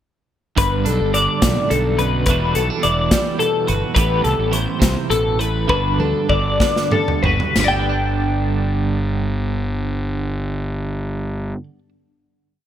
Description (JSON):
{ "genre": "math rock and midwest emo", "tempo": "60-71 BPM (dotted quarters)", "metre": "6/8", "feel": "straight", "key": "G major", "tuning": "A4 = 440 Hz", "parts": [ { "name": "twelve-string electric guitar", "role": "accompaniment", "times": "0.6-11.9 s", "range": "E2 to G4", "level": "-24 LUFS", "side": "right 9 dB", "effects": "tremolo" }, { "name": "twelve-string electric guitar", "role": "arpeggios", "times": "0.6-11.6 s", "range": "A4 to G5", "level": "-20 LUFS", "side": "left 4 dB", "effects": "analog chorus" }, { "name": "fuzz fingered electric bass", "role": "bass", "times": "0.6-11.5 s", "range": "E1 to D2", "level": "-21 LUFS", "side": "equal", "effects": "overdrive" }, { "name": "modern studio drum kit", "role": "drums", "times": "0.6-7.7 s", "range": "hi-hat, kick drum, snare drum, splash cymbal, toms", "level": "-20 LUFS", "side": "equal", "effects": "gated reverb" } ], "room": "moderate lush hall reverb, RT60 2.3 s", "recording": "bright 1980s-style digital production", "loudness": "-16 LUFS", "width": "side -10 dB against mid", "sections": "0.6-7.6 A section; 7.6-11.6 final chord", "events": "slowing down 4.0-7.6; drum fill 5.7-7.6", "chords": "0.6 Gmaj9; 2.3 Em9; 4.0 Am9; 5.7 Gmaj9; 7.6 G" }